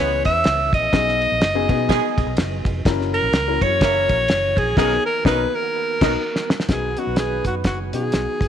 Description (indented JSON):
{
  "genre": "uptempo 1960s-style soul",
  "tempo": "125 BPM",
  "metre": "4/4",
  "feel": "swing 59% on 8ths",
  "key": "unclear",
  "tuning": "A4 = 440 Hz",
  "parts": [
    { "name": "breathy alto saxophone", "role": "melody", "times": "0.0-8.5 s", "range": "F#4 to E5", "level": "-21 LUFS", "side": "equal", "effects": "tape echo" },
    { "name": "glockenspiel with rubber mallets", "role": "second line", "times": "0.0-4.8 s", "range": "G#6 to E7", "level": "-30 LUFS", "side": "right 16 dB", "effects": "none" },
    { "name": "mellow horn section", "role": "second line", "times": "0.0-8.4 s", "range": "D#3 to B4", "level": "-28 LUFS", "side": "right 12 dB", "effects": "none" },
    { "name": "dark upright piano", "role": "accompaniment", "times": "0.0-8.4 s", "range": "B3 to C#5", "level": "-25 LUFS", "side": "left 12 dB", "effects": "none" },
    { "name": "mellow tonewheel organ", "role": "sustained chords", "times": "0.0-8.5 s", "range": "D#3 to G#4", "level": "-34 LUFS", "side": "right 14 dB", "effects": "chorus vibrato, slow rotary speaker" },
    { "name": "vintage muted fingered electric bass", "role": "bass", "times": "0.0-8.5 s", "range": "E#1 to B2", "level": "-26 LUFS", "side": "equal", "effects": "none" },
    { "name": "cloth-damped thuddy drum kit", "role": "drums", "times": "0.2-8.5 s", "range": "crash cymbal, hi-hat, kick drum, ride cymbal, snare drum", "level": "-22 LUFS", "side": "equal", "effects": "none" }
  ],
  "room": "light reverb, small room ambience",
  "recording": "1960s-style stereo with parts hard left and right",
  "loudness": "-17 LUFS",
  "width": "side -9 dB against mid",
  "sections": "0.0-6.7 A section; 6.7-8.5 B section",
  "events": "band accent 4.8-6.7; drum fill 6.2-6.7",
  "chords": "0.0 C#m7; 0.9 B6; 2.9 F#7; 4.8 Bmaj7; 6.7 B",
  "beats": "0.45 | 0.93 1.41 1.89 2.37 | 2.85 3.33 3.81 4.29 | 4.77 5.25 5.73 6.21 | 6.69 7.17 7.65 8.13"
}